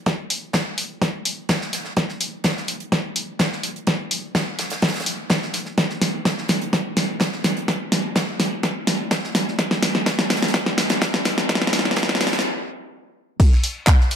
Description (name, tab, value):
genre	house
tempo	126 BPM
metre	4/4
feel	straight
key	none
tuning	none
part	deep house drum kit	drums	0.1-14.2 s	crash cymbal, handclaps, hi-hat, snare drum	-20 LUFS	equal	sidechain pumping on hats, sidechain pumping on cymbals
part	electronic kick drum	drums	0.1-14.0 s	none	-20 LUFS	equal	high-pass filter on kick, high-pass filter on room
part	gated 80s drum kit	drums	0.1-14.2 s	hi-hat, snare drum	-30 LUFS	right 2 dB	sidechain pumping on hats, high-pass filter on hats, high-pass filter on snare, high-pass filter on room
room	wet digital room reverb, RT60 1.3 s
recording	dark, warm production, high-pass filter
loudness	-19 LUFS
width	side -8 dB against mid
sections	0.0-13.4 A section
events	build-up 0.0-13.4; drum fill 0.0-12.4; stop 12.4-13.4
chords	none